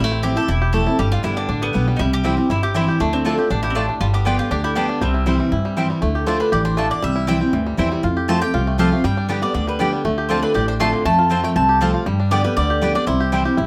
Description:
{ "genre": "bluegrass", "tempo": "238 BPM", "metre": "4/4", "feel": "straight", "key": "C major", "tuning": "A4 = 440 Hz", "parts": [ { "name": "bluegrass banjo", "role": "melody", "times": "0.0-13.7 s", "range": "D3 to G4", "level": "-28 LUFS", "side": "equal", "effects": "none" }, { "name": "mandolin", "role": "melody", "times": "0.0-13.7 s", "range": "B3 to C6", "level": "-26 LUFS", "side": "equal", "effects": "plate reverb" }, { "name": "picked steel-string acoustic guitar", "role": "accompaniment", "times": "0.0-13.7 s", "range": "E2 to G4", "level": "-23 LUFS", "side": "equal", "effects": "none" }, { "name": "upright bass", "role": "bass", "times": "0.0-13.7 s", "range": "E1 to G2", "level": "-24 LUFS", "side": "equal", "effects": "none" }, { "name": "mandolin", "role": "stabs", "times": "2.2-13.4 s", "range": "A3 to A5", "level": "-27 LUFS", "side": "equal", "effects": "none" } ], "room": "moderate studio reverb, RT60 0.6 s", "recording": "none", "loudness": "-19 LUFS", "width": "mono", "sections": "0.0-6.0 A section; 6.0-13.7 B section", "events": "none", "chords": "0.0 Am; 1.0 G; 2.0 C; 3.0 Dm; 4.0 G; 5.0 C; 6.0 Dm; 7.0 C; 8.0 F; 9.0 G; 10.0 Dm7; 11.1 F; 12.1 G; 13.1 C", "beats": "0.24 0.49 0.74 | 0.99 1.24 1.49 1.74 | 1.99 2.25 2.50 2.75 | 3.00 3.25 3.50 3.75 | 4.01 4.26 4.51 4.76 | 5.01 5.27 5.52 5.77 | 6.02 6.27 6.53 6.78 | 7.03 7.28 7.53 7.78 | 8.04 8.29 8.54 8.79 | 9.04 9.29 9.54 9.80 | 10.05 10.30 10.55 10.80 | 11.06 11.31 11.56 11.81 | 12.06 12.32 12.57 12.82 | 13.07 13.32 13.58" }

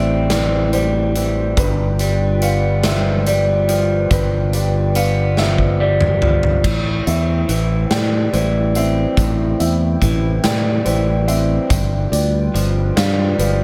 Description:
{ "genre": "post-rock", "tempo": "47 BPM (dotted quarters)", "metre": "6/8", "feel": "straight", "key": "A minor", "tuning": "A4 = 440 Hz", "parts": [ { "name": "hollow soft pad", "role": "sustained chords", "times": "0.0-13.6 s", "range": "G3 to G5", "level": "-28 LUFS", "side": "equal", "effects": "chorus" }, { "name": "electric guitar through a small old amp", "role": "arpeggios", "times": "0.0-13.6 s", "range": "G2 to C4", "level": "-23 LUFS", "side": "equal", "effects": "analog delay" }, { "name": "felt-muted upright piano", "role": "arpeggios", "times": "0.0-13.6 s", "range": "B4 to G5", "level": "-28 LUFS", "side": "equal", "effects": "analog delay" }, { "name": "modern bright fingered electric bass", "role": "bass", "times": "0.0-13.6 s", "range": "G1 to A2", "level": "-20 LUFS", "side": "equal", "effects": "none" }, { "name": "big rock drum kit", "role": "drums", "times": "0.3-13.6 s", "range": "crash cymbal, hi-hat, kick drum, snare drum, toms", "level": "-24 LUFS", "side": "equal", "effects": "none" } ], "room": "light reverb, small room ambience", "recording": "none", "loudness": "-17 LUFS", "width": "mono", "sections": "0.0-6.6 A section; 6.6-13.6 B section", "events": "drum fill 5.4-6.6", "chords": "0.0 Am7; 1.6 G7; 6.6 Am7; 11.7 G7", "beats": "0.31 | 1.58 2.84 | 4.11 5.38 | 6.64 7.91 | 9.18 10.44 | 11.71 12.97" }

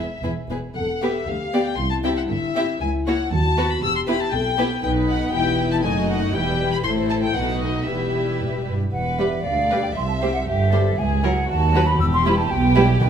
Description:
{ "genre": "quick classical-period movement for symphony orchestra", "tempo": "118 BPM", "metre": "2/4", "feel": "straight", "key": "E minor", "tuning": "A4 = 440 Hz", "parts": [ { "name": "warm chamber violin section", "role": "melody", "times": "0.0-13.1 s", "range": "A#4 to E6", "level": "-27 LUFS", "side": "left 5 dB", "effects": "none" }, { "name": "warm chamber violin section", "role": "second line", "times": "0.0-13.1 s", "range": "F#4 to E5", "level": "-29 LUFS", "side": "left 2 dB", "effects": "none" }, { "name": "warm chamber viola section", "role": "accompaniment", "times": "0.0-13.1 s", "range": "F#3 to G4", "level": "-26 LUFS", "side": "right 1 dB", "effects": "none" }, { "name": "clear chamber double bass section", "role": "bass", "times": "0.0-13.1 s", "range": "E1 to D#2", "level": "-26 LUFS", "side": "right 2 dB", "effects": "none" }, { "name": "dark chamber cello section", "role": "bass", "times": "0.0-13.1 s", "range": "C2 to B2", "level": "-26 LUFS", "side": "right 2 dB", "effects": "none" }, { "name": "mellow French horn section", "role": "sustained chords", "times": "0.8-8.7 s", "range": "D#4 to A4", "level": "-26 LUFS", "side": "left 5 dB", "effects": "none" }, { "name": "hollow small flute group", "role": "second line", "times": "8.9-13.1 s", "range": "E5 to E6", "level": "-23 LUFS", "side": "right 1 dB", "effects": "none" }, { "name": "timpani", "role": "percussion", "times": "12.0-13.1 s", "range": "E2 to B2", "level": "-25 LUFS", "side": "left 1 dB", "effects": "none" } ], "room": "wet recital hall reverb, RT60 1.7 s", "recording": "minimal, uncompressed stereo recording", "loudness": "-19 LUFS", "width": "side -8 dB against mid", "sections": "0.8-8.9 A section; 8.9-13.1 A section", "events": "none", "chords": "0.0 E; 0.8 Em; 1.3 G7/D; 1.8 C; 2.8 F#7/C#; 3.3 B/D#; 3.8 Em; 4.8 B; 5.3 Em; 5.8 D#dim/F#; 6.3 Em; 6.8 Am; 7.4 B7; 7.9 Em; 9.4 G7/D; 10.0 C; 11.0 F#7/C#; 11.5 B/D#; 12.0 Em", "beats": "0.23 | 0.75 1.27 | 1.78 2.29 | 2.81 3.31 | 3.82 4.32 | 4.83 5.33 | 5.84 6.34 | 6.84 7.36 | 7.88 8.40 | 8.93 9.44 | 9.96 10.47 | 10.98 11.49 | 11.99 12.50 | 13.00" }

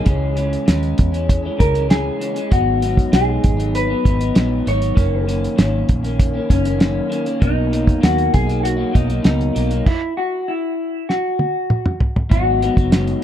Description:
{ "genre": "indie pop, bedroom pop", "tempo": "98 BPM", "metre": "4/4", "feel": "straight", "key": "unclear", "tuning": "A4 = 440 Hz", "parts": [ { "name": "mellow electric guitar", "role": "melody", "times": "0.0-13.2 s", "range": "C#4 to C#5", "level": "-22 LUFS", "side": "left 1 dB", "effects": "wide subtle chorus, analog delay, plate reverb" }, { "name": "electric guitar through a small old amp", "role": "accompaniment", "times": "0.0-13.2 s", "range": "F#2 to D#4", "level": "-22 LUFS", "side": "left 2 dB", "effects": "wide subtle chorus, warbly pitch drift, plate reverb" }, { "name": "vintage muted fingered electric bass", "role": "bass", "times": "0.1-13.1 s", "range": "F#1 to E2", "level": "-21 LUFS", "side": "equal", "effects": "none" }, { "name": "cloth-damped thuddy drum kit", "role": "drums", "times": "0.1-13.2 s", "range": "crash cymbal, hi-hat, kick drum, snare drum, toms", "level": "-16 LUFS", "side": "equal", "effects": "none" } ], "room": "light reverb", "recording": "dark, warm production", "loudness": "-15 LUFS", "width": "side -10 dB against mid", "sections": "0.0-12.3 A section", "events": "stop 9.9-12.3; drum fill 11.1-12.3", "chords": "0.1 C#m; 2.5 G#m7; 5.0 F#6; 7.4 Bmaj7; 9.9 N.C.; 12.3 G#m7", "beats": "| 0.07 0.69 1.30 1.91 | 2.52 3.13 3.75 4.36 | 4.97 5.58 6.20 6.81 | 7.42 8.03 8.64 9.26 | 9.87 10.48 11.09 11.70 | 12.31 12.93" }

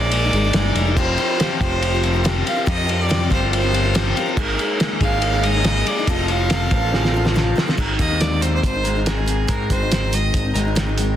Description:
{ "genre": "folk rock and heartland rock", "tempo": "141 BPM", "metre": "4/4", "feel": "straight", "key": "unclear", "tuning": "A4 = 440 Hz", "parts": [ { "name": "rich fiddle", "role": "melody", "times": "0.0-10.6 s", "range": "Ab4 to F5", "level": "-24 LUFS", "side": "right 2 dB", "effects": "digital delay" }, { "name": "picked steel-string acoustic guitar", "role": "accompaniment", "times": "0.0-11.2 s", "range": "F2 to Bb4", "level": "-27 LUFS", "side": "left 6 dB", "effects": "none" }, { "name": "clear studio string section", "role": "sustained chords", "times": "0.0-7.8 s", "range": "Bb3 to C5", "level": "-35 LUFS", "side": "right 1 dB", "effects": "none" }, { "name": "electric guitar through a small old amp", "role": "riff", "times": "0.0-11.2 s", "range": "F3 to Bb4", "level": "-26 LUFS", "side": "equal", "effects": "none" }, { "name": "picked electric bass", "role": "bass", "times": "0.0-11.2 s", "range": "F1 to Ab2", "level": "-21 LUFS", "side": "equal", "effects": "none" }, { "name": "cloth-damped thuddy drum kit", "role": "drums", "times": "0.1-11.1 s", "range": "crash cymbal, hi-hat, kick drum, ride cymbal, snare drum", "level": "-21 LUFS", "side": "equal", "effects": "none" }, { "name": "dark upright piano", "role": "second line", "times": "6.9-7.5 s", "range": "A3 to Ab4", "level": "-30 LUFS", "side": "right 1 dB", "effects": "none" } ], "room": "light reverb", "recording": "dense, heavily limited modern master", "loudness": "-16 LUFS", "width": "side -10 dB against mid", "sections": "0.0-7.8 A section; 7.8-11.2 B section", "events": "drum fill 6.9-7.8", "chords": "0.0 Absus2; 1.0 Fsus2; 4.4 Absus2; 6.1 F; 7.8 Abadd9", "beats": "0.12 0.54 | 0.97 1.39 1.82 2.25 | 2.67 3.10 3.52 3.95 | 4.37 4.80 5.22 5.65 | 6.08 6.50 6.93 7.36 | 7.78 8.21 8.63 9.06 | 9.49 9.91 10.34 10.77" }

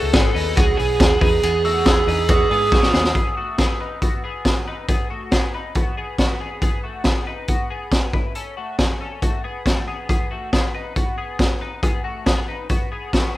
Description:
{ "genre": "jangly indie pop", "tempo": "138 BPM", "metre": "4/4", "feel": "straight", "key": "unclear", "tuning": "A4 = 440 Hz", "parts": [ { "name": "high-gain lead guitar", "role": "melody", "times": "0.0-2.9 s", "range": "G#4 to A4", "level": "-20 LUFS", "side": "right 4 dB", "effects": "distortion" }, { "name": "warm upright piano", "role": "accompaniment", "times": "0.0-3.2 s", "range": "B3 to B4", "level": "-31 LUFS", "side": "right 2 dB", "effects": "none" }, { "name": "twelve-string electric guitar", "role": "arpeggios", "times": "0.0-13.4 s", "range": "A3 to B4", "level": "-28 LUFS", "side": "left 3 dB", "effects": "analog chorus" }, { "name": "vintage muted fingered electric bass", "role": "bass", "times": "0.0-3.1 s", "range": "G#1 to G#2", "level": "-24 LUFS", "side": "equal", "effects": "none" }, { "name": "raw garage drum kit", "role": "drums", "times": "0.1-13.2 s", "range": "hi-hat, kick drum, ride cymbal, snare drum", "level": "-19 LUFS", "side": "equal", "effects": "none" }, { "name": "glockenspiel with rubber mallets", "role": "second line", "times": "1.6-3.1 s", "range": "D#6 to E6", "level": "-26 LUFS", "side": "right 1 dB", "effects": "none" } ], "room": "light reverb, studio reverb", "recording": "rough home demo mix", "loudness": "-18 LUFS", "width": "side -16 dB against mid", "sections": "0.0-3.2 A section; 3.2-13.4 B section", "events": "drum fill 2.7-3.2", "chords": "0.0 C#m7; 1.2 Emaj7; 3.2 B6; 8.1 F#m; 10.1 B6", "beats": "0.14 0.57 1.00 | 1.43 1.86 2.29 2.72 | 3.15 3.59 4.02 4.45 | 4.88 5.32 5.75 6.19 | 6.62 7.05 7.49 7.92 | 8.35 8.79 9.22 9.66 | 10.09 10.53 10.96 11.39 | 11.83 12.26 12.70 13.13" }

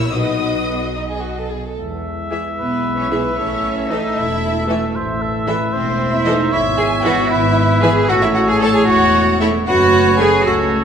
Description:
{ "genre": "quick classical-period movement for symphony orchestra", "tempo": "76 BPM (dotted quarters)", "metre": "6/8", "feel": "rubato", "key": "E major", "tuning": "A4 = 441 Hz", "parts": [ { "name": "rich studio violin section", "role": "melody", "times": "0.0-10.3 s", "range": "C#5 to E6", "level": "-29 LUFS", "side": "left 4 dB", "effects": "none" }, { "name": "rich chamber violin section", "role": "second line", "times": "0.0-10.5 s", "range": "D#4 to A5", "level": "-25 LUFS", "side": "left 2 dB", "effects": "none" }, { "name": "rich studio viola section", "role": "accompaniment", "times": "0.0-10.3 s", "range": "E3 to D#5", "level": "-24 LUFS", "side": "right 1 dB", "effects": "none" }, { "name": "dark French horn section", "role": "sustained chords", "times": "0.0-10.8 s", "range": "G#3 to E4", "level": "-22 LUFS", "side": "left 4 dB", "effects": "none" }, { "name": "rich studio cello section", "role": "bass", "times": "0.0-10.7 s", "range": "B2 to A4", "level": "-19 LUFS", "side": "right 2 dB", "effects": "none" }, { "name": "rich studio double bass section", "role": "bass", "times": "0.0-10.8 s", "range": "E1 to E2", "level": "-23 LUFS", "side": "right 2 dB", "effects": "none" }, { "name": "clear trumpet", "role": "stabs", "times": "1.8-10.8 s", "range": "C#5 to E5", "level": "-22 LUFS", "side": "equal", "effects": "none" }, { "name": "mellow oboe", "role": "second line", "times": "2.6-10.8 s", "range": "A4 to C#5", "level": "-22 LUFS", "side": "right 1 dB", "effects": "none" } ], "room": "wet concert hall reverb, RT60 2.3 s", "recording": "minimal, uncompressed stereo recording", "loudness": "-14 LUFS", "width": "side -7 dB against mid", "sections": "0.0-1.8 A section; 1.8-10.8 B section", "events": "none", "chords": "0.1 B; 1.8 E; 3.4 A; 5.0 Am; 6.5 E/G#; 8.1 A; 9.7 F#m", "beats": "| 0.12 0.95 | 1.78 2.58 | 3.38 4.17 | 4.96 5.74 | 6.53 7.31 | 8.09 8.88 | 9.68 10.47" }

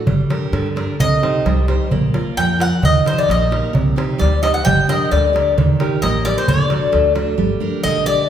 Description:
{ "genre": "greek folk, Greek bouzouki band", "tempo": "132 BPM", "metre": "2/4", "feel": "straight", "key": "unclear", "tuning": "A4 = 439 Hz", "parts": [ { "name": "picked steel-string acoustic guitar", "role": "accompaniment", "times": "0.0-8.3 s", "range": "C3 to D5", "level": "-20 LUFS", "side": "right 3 dB", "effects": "none" }, { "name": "upright bass", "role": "bass", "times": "0.1-8.2 s", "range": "G1 to G2", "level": "-21 LUFS", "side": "equal", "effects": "none" }, { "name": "darbuka", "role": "percussion", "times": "0.1-7.3 s", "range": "none", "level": "-20 LUFS", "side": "right 1 dB", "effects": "none" }, { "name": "Greek bouzouki", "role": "melody", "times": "1.0-8.3 s", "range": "C5 to G5", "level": "-18 LUFS", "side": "left 2 dB", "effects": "none" } ], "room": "wet recital hall reverb, RT60 1.8 s", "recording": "recorded in a church or concert hall", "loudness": "-14 LUFS", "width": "side -9 dB against mid", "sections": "0.1-7.4 A section", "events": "speeding up 0.0-8.3", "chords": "0.1 Gm; 1.0 Cm; 1.9 Bb; 2.8 Eb; 3.8 Cm; 4.7 Gm; 5.6 Eb; 6.5 D; 7.4 Gm", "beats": "| 0.07 0.53 | 0.99 1.46 | 1.92 2.38 | 2.84 3.29 | 3.75 4.21 | 4.67 5.12 | 5.57 6.03 | 6.48 6.93 | 7.38 7.83 | 8.28" }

